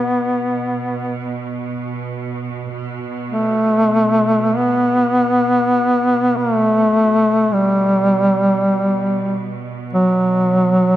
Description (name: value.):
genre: caucasian folk, Caucasian lament.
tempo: free time.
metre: none.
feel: none.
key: unclear.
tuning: A4 = 437 Hz.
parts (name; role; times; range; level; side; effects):
warm duduk; melody; 0.0-11.0 s; F#3 to B3; -14 LUFS; equal; none.
bright symphonic string section; drone; 0.0-11.0 s; B2; -27 LUFS; right 4 dB; none.
room: moderate concert hall reverb, RT60 2.2 s.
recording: dark, warm production.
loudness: -14 LUFS.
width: side -13 dB against mid.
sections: 0.0-11.0 A section.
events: none.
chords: none.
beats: free time.